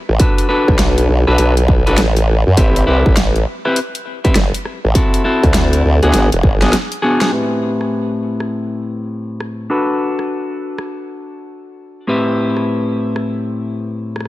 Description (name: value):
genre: glitch hop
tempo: 101 BPM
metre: 4/4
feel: swing 63% on 16ths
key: A dorian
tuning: A4 = 440 Hz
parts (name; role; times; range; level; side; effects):
- formant-sweep wobble bass; bass; 0.1-6.7 s; E1 to F#2; -13 LUFS; equal; chorus, overdrive
- clean electric guitar; stabs; 0.2-14.3 s; A2 to B4; -18 LUFS; left 1 dB; sidechain pumping, low-pass filter, ping-pong delay
- dubstep drum kit; drums; 0.2-14.3 s; hi-hat, rim click, snare drum; -21 LUFS; equal; none
- electronic kick drum; drums; 0.2-6.6 s; none; -14 LUFS; equal; distortion
room: little or no reverb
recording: none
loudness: -13 LUFS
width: side -16 dB against mid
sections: 0.0-7.3 A section; 7.3-14.3 B section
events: drum fill 6.1-7.3; break 6.7-7.3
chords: 0.2 Bm7; 2.6 Am7; 5.0 D7; 6.1 E7 (rootless); 7.3 Am7; 9.7 Bm7; 12.1 Am7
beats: | 0.20 0.79 1.39 1.98 | 2.58 3.17 3.76 4.36 | 4.95 5.54 6.14 6.73 | 7.33 7.92 8.52 9.11 | 9.70 10.30 10.89 11.49 | 12.08 12.67 13.27 13.86